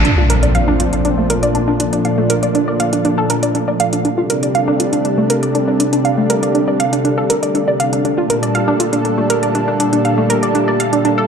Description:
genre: melodic techno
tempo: 120 BPM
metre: 4/4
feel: straight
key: unclear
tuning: A4 = 440 Hz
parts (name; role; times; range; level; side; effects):
- lush unison pad; sustained chords; 0.0-11.3 s; Bb2 to A4; -17 LUFS; right 1 dB; chorus
- analog pluck; arpeggios; 0.0-11.2 s; A3 to F5; -17 LUFS; right 1 dB; chorus, tape echo
- overtone-sweeping drone; drone; 0.0-11.3 s; D3 to A3; -23 LUFS; left 1 dB; chorus, built-in reverb
- electronic hi-hat; drums; 0.0-11.2 s; none; -22 LUFS; equal; overdrive
- impact; sound effects; 0.0-2.0 s; none; -18 LUFS; equal; none
room: wet lush hall reverb, RT60 1.9 s, digital ambience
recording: dark, warm production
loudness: -13 LUFS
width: side -6 dB against mid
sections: 0.0-11.3 A section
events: impact 0.0-2.0; filter sweep on analog synth pad 0.0-11.3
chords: 0.0 Bb; 4.0 Csus2; 8.0 Gm7/Bb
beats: | 0.05 0.55 1.05 1.55 | 2.05 2.55 3.05 3.55 | 4.05 4.55 5.05 5.55 | 6.05 6.55 7.05 7.55 | 8.05 8.55 9.05 9.55 | 10.05 10.55 11.05

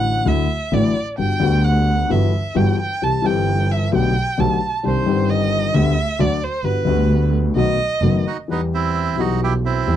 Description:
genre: tango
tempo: 131 BPM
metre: 4/4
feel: rubato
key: G major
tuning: A4 = 440 Hz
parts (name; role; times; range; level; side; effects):
- warm violin; second line; 0.0-8.2 s; B4 to A5; -23 LUFS; right 3 dB; none
- dark concert grand piano; accompaniment; 0.0-10.0 s; F#1 to B4; -20 LUFS; left 5 dB; none
- dark double bass; bass; 0.0-10.0 s; F#1 to E2; -21 LUFS; right 3 dB; none
- bandoneon; melody; 8.3-10.0 s; B3 to G4; -22 LUFS; right 8 dB; none
room: little or no reverb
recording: dry, close 1970s-style studio recording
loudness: -16 LUFS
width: side -10 dB against mid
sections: 0.0-8.5 A section; 8.5-10.0 B section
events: violin solo 0.0-8.5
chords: 0.0 Dadd9; 1.2 Gmaj7; 2.1 Emadd9/G; 3.0 C; 3.9 Gadd9/B; 4.8 Cmadd9; 5.7 G/D; 6.2 D; 6.6 Gmaj7; 7.6 B7; 8.5 Em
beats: 0.27 0.73 | 1.19 1.65 2.11 2.57 | 3.03 3.49 3.94 4.39 | 4.84 5.29 5.74 6.19 | 6.64 7.10 7.56 8.03 | 8.49 8.95 9.41 9.88

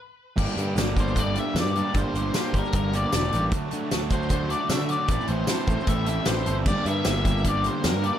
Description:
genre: indie rock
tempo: 153 BPM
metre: 4/4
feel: straight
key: unclear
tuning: A4 = 442 Hz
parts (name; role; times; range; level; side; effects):
- fuzz guitar; riff; 0.4-8.2 s; G2 to A4; -28 LUFS; right 2 dB; distortion
- fuzz picked electric bass; bass; 0.4-8.1 s; E1 to D3; -27 LUFS; equal; overdrive
- loose indie drum kit; drums; 0.4-8.1 s; crash cymbal, hi-hat, kick drum, snare drum, tambourine; -27 LUFS; equal; none
- egg shaker; percussion; 0.4-7.9 s; none; -45 LUFS; right 11 dB; none
- octave-fuzz lead guitar; melody; 1.0-8.2 s; Bb4 to E5; -29 LUFS; left 3 dB; distortion, plate reverb
room: light reverb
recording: none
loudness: -22 LUFS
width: side -10 dB against mid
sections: 0.4-8.2 A section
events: stop 0.0-0.4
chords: 0.4 Gm; 3.5 D; 5.1 Am; 6.7 Gm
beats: 0.00 | 0.39 0.78 1.17 1.56 | 1.96 2.35 2.74 3.13 | 3.52 3.92 4.31 4.70 | 5.09 5.49 5.88 6.27 | 6.67 7.06 7.45 7.85

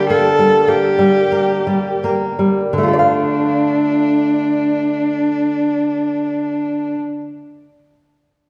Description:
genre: romantic duo for cello and classical guitar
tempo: 41-55 BPM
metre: 3/4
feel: rubato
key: D minor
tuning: A4 = 439 Hz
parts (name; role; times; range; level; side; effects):
- rich cello; melody; 0.0-7.0 s; D4 to A4; -18 LUFS; equal; none
- nylon-string guitar; accompaniment; 0.0-7.2 s; D3 to F5; -20 LUFS; equal; none
room: wet recital hall reverb, RT60 1.8 s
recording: recorded in a church or concert hall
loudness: -16 LUFS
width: mono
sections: 0.0-2.7 A section; 2.7-6.9 B section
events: slowing down 0.0-2.7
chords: 0.0 Gm/D; 2.7 Dm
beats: 0.09 1.31 | 2.73 4.12 5.54

